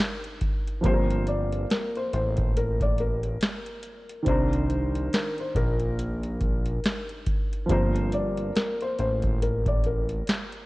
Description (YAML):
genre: lo-fi hip hop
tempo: 70 BPM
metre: 4/4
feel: swing 59% on 16ths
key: C dorian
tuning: A4 = 440 Hz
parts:
  - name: felt-muted upright piano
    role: melody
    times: 0.0-10.7 s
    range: Bb4 to D5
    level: -31 LUFS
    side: left 2 dB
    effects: none
  - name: dark upright piano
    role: accompaniment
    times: 0.0-10.7 s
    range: Eb3 to Bb4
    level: -32 LUFS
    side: right 1 dB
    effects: none
  - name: booming analog drum machine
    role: drums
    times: 0.0-10.7 s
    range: hi-hat, kick drum, snare drum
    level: -27 LUFS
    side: equal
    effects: vintage 12-bit sampler grit
  - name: fat analog bass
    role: bass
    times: 0.8-10.2 s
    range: G1 to C2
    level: -28 LUFS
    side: equal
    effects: tube saturation
room: light reverb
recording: worn, warbling old tape, cassette tape, warbly pitch drift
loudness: -24 LUFS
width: side -20 dB against mid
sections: 0.0-10.7 A section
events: none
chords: 0.0 Cm9; 0.8 Gm11; 4.3 Cm9; 7.7 Gm11